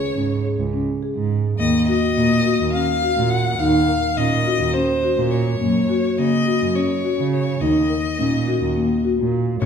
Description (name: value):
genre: contemporary instrumental, chamber music in an uneven meter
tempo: 209 BPM (eighths)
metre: 7/8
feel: straight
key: Eb dorian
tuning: A4 = 440 Hz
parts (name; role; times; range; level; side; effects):
- rich violin; melody; 0.0-9.7 s; C5 to Gb5; -23 LUFS; left 3 dB; none
- marimba with soft mallets; arpeggios; 0.0-9.7 s; Bb3 to Bb4; -20 LUFS; left 2 dB; none
- muted cello; bass; 0.2-9.7 s; Db2 to Db3; -23 LUFS; right 5 dB; none
- frame drum; percussion; 9.6-9.7 s; none; -18 LUFS; left 4 dB; none
room: wet recital hall reverb, RT60 1.7 s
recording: recorded in a church or concert hall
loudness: -17 LUFS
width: side -7 dB against mid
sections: 0.0-9.6 A section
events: none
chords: 0.0 Db5; 1.6 Ebm7; 5.6 Gb; 7.6 Ebm